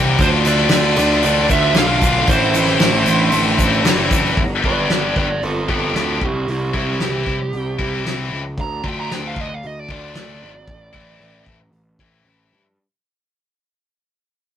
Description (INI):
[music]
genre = indie rock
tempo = 114 BPM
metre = 4/4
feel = straight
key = unclear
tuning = A4 = 441 Hz
[part]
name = heavy high-gain guitar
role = riff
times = 0.0-12.6 s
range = A2 to G4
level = -19 LUFS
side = left 6 dB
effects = distortion
[part]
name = thick fuzz guitar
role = riff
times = 0.0-4.4 s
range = A2 to F4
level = -23 LUFS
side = right 5 dB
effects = distortion
[part]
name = fuzz picked electric bass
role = bass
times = 0.0-12.8 s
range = F#1 to G2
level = -22 LUFS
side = equal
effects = overdrive
[part]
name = smooth overdriven lead guitar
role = melody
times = 0.2-11.4 s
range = E4 to Bb5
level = -22 LUFS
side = right 3 dB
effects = none
[part]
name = soft brush drum kit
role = drums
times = 0.2-12.4 s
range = hi-hat, kick drum, ride cymbal, snare drum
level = -20 LUFS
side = equal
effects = none
[part]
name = tube shaker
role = percussion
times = 0.2-4.3 s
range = none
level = -34 LUFS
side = right 6 dB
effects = none
[sound]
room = light reverb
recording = rough rehearsal-room recording, tube saturation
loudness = -15 LUFS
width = side -9 dB against mid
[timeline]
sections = 0.0-4.4 A section; 4.4-12.8 B section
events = fade-out 4.4-12.8; lead electric guitar solo 4.4-12.8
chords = 0.2 Dm; 2.3 Am; 4.4 G; 6.2 C; 8.6 Dm; 10.7 Am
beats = | 0.20 0.72 1.25 1.76 | 2.29 2.81 3.33 3.85 | 4.37 4.90 5.42 5.94 | 6.47 6.99 7.52 8.05 | 8.57 9.10 9.62 10.15 | 10.68 11.20 11.73 12.26